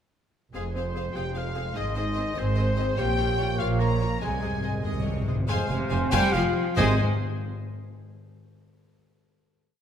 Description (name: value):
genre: cinematic, heroic adventure film score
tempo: 96 BPM (dotted quarters)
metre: 6/8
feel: straight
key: Ab major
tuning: A4 = 440 Hz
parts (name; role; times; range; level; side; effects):
- rich symphonic violin section; melody; 0.5-7.0 s; Ab4 to Bb5; -35 LUFS; left 6 dB; none
- bright symphonic violin section; second line; 0.5-7.0 s; C5 to F5; -39 LUFS; left 3 dB; none
- mellow hollow flute section; second line; 0.5-7.0 s; Ab4 to Bb5; -36 LUFS; left 2 dB; none
- clear symphonic viola section; accompaniment; 0.5-7.0 s; Ab3 to C5; -38 LUFS; left 2 dB; none
- mellow French horn section; sustained chords; 0.5-7.0 s; Ab3 to Bb4; -33 LUFS; left 4 dB; none
- warm trombone section; sustained chords; 0.5-7.0 s; C3 to Bb3; -36 LUFS; right 1 dB; none
- mellow trumpet; stabs; 0.5-7.0 s; Ab4 to G5; -35 LUFS; right 2 dB; none
- clear studio cello section; bass; 0.5-7.0 s; F2 to Ab3; -32 LUFS; right 2 dB; none
- rich studio double bass section; bass; 0.5-7.0 s; F1 to C2; -29 LUFS; right 2 dB; none
- clear oboe; second line; 0.6-7.0 s; Ab4 to Bb5; -37 LUFS; right 1 dB; none
- timpani; percussion; 4.2-7.0 s; Ab2; -30 LUFS; left 2 dB; none
- bright clarinet; second line; 5.5-7.0 s; C5; -36 LUFS; left 2 dB; none
room: wet scoring stage reverb, RT60 1.8 s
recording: none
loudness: -23 LUFS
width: side -8 dB against mid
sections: 0.5-5.5 theme; 5.5-6.8 outro; 6.8-8.1 final chord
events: slowing down 3.6-6.8; timpani fill 4.2-5.5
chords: 0.5 Fm; 1.8 Ab; 3.0 Bbm; 4.2 Ab/C; 5.5 Fm; 6.8 Ab